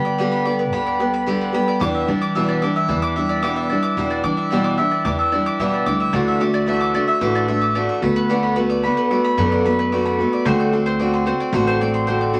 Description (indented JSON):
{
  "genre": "folk",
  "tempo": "111 BPM",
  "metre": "4/4",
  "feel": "straight",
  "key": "D major",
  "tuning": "A4 = 436 Hz",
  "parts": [
    { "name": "picked steel-string acoustic guitar", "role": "accompaniment", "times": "0.0-12.4 s", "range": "E2 to G4", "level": "-22 LUFS", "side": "equal", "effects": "none" },
    { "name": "bowl-back mandolin", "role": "arpeggios", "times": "0.0-12.4 s", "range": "B4 to D6", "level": "-24 LUFS", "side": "equal", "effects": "none" },
    { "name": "upright bass", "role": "bass", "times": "0.0-12.4 s", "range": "A1 to E3", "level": "-26 LUFS", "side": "equal", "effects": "none" }
  ],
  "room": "moderate studio reverb, RT60 0.7 s",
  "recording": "vinyl crackle",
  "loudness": "-19 LUFS",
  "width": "mono",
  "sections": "0.0-6.1 A section; 6.1-12.4 B section",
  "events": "none",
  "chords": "0.0 G/D; 1.8 Em7; 6.1 Dadd9; 8.0 Bm7/D; 10.5 D7"
}